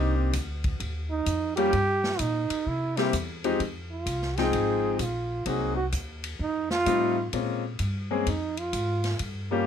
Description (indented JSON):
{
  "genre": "jazz, small-group swing and bop",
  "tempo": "129 BPM",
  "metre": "4/4",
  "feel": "swing 66% on 8ths",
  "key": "C minor, F minor from 3.6 s",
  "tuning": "A4 = 440 Hz",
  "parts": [
    { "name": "breathy trombone", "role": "second line", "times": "0.0-9.7 s", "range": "Bb3 to Ab4", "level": "-28 LUFS", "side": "right 3 dB", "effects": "none" },
    { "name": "clear grand piano", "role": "accompaniment", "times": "0.0-9.7 s", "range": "F3 to G5", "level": "-27 LUFS", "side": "left 5 dB", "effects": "none" },
    { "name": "upright bass", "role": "bass", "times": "0.0-9.6 s", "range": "Ab1 to C3", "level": "-31 LUFS", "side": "equal", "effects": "none" },
    { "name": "swinging big-band drum kit", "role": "drums", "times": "0.3-9.3 s", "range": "hi-hat, kick drum, ride cymbal, snare drum", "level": "-35 LUFS", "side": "left 1 dB", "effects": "none" }
  ],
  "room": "light reverb",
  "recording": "close, detailed microphones",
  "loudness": "-25 LUFS",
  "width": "side -8 dB against mid",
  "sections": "0.0-3.6 A section; 3.6-9.7 A section",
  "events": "trombone solo 0.0-9.7",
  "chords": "0.0 Cm7; 1.7 Gm; 2.7 C7; 3.6 Fm7; 5.5 Cm7b5; 6.4 F7; 7.3 Bbm7",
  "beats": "0.34 0.80 1.27 | 1.74 2.20 2.67 3.13 | 3.60 4.07 4.53 5.00 | 5.47 5.93 6.40 6.87 | 7.33 7.80 8.27 8.73 | 9.20"
}